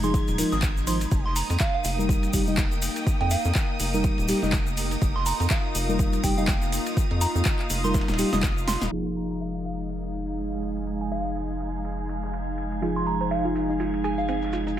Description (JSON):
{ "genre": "deep house", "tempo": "123 BPM", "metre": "4/4", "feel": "swing 57% on 16ths", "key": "F minor", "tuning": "A4 = 440 Hz", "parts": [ { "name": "soft synth bell", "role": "melody", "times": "0.0-14.5 s", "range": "F5 to Eb6", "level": "-32 LUFS", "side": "right 3 dB", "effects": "chorus, phaser, dub echo" }, { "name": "warbly tape-like pad", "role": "sustained chords", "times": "0.0-14.8 s", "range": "Ab3 to Ab5", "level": "-33 LUFS", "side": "right 1 dB", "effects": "chorus, built-in reverb, sidechain pumping" }, { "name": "mellow FM electric piano", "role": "stabs", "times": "0.0-14.8 s", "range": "F3 to Eb5", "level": "-29 LUFS", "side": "left 1 dB", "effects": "chorus, sidechain pumping, low-pass filter, dub echo" }, { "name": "rubbery square bass", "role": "bass", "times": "0.0-14.8 s", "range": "Eb1 to F2", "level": "-30 LUFS", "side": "equal", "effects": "sidechain pumping" }, { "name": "egg shaker", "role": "percussion", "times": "0.0-8.9, 12.8-14.8 s", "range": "none", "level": "-37 LUFS", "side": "left 5 dB", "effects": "none" }, { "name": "rich symphonic string section", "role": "texture", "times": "0.0-14.8 s", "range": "Ab3 to G5", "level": "-37 LUFS", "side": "equal", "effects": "sidechain pumping" }, { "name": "string machine, violins", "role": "texture", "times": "0.0-14.8 s", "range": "Eb6 to Ab6", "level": "-39 LUFS", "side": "equal", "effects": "ensemble chorus" }, { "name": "dusty soul sampler-style drum kit", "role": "drums", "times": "0.1-14.8 s", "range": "hi-hat, ride cymbal, snare drum", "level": "-41 LUFS", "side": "right 2 dB", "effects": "overdrive, sidechain pumping on cymbals, high-pass filter on cymbals, low-pass filter on cymbals, high-pass filter on snare, low-pass filter on snare, sidechain pumping on hats, high-pass filter on hats, low-pass filter on hats, high-pass filter on room, low-pass filter on room" }, { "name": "electronic kick drum", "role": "drums", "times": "0.1-8.5 s", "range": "none", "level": "-25 LUFS", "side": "equal", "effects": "overdrive" }, { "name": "deep house drum kit", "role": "drums", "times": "0.4-8.9 s", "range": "handclaps, hi-hat, snare drum", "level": "-31 LUFS", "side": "equal", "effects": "overdrive, low-pass filter on hats, low-pass filter on snare" }, { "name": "soft round pluck", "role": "arpeggios", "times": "12.8-14.8 s", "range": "C4 to C5", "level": "-32 LUFS", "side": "right 2 dB", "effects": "chorus, sidechain pumping, ping-pong delay" } ], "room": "digital ambience", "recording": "low-pass filter", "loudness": "-23 LUFS", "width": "side -11 dB against mid", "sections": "0.0-8.9 A section; 8.9-14.8 B section", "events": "drum fill 7.9-8.9; band accent 8.8; filter sweep on FM electric piano 8.9-14.8; filter sweep on ambient pad 8.9-14.8; filter sweep 8.9-14.8", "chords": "0.0 Fm7; 1.1 Eb; 8.9 Fm7", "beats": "0.14 0.63 | 1.11 1.60 2.09 2.58 | 3.07 3.55 4.04 4.53 | 5.02 5.51 5.99 6.48 | 6.97 7.46 7.95 8.43 | 8.92 9.41 9.90 10.38 | 10.87 11.36 11.85 12.34 | 12.82 13.31 13.80 14.29 | 14.77" }